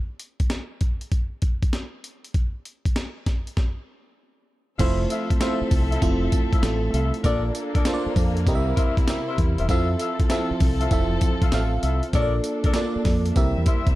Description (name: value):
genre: R&B, new jack swing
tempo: 98 BPM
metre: 4/4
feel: swing 67% on 16ths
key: unclear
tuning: A4 = 440 Hz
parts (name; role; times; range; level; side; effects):
- breakbeat sampler-style drum kit; drums; 0.2-14.0 s; crash cymbal, hi-hat, kick drum, snare drum, tambourine; -22 LUFS; equal; none
- FM electric piano; accompaniment; 4.8-14.0 s; A3 to F5; -26 LUFS; right 2 dB; chorus
- dark studio string section; sustained chords; 4.8-14.0 s; C3 to E5; -30 LUFS; left 1 dB; none
- mellow horn section; stabs; 4.8-13.9 s; D4 to E5; -31 LUFS; left 4 dB; digital delay
- deep dub fingered electric bass; bass; 4.8-14.0 s; E1 to F2; -24 LUFS; equal; none
room: little or no reverb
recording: dark, warm production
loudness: -20 LUFS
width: side -17 dB against mid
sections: 0.0-4.8 A section; 4.8-14.0 B section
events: stop 3.6-4.8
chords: 0.0 N.C.; 4.8 Fmaj7; 7.2 Bbmaj7; 8.5 C7; 9.7 Fmaj7; 12.1 Bbmaj7; 13.4 C7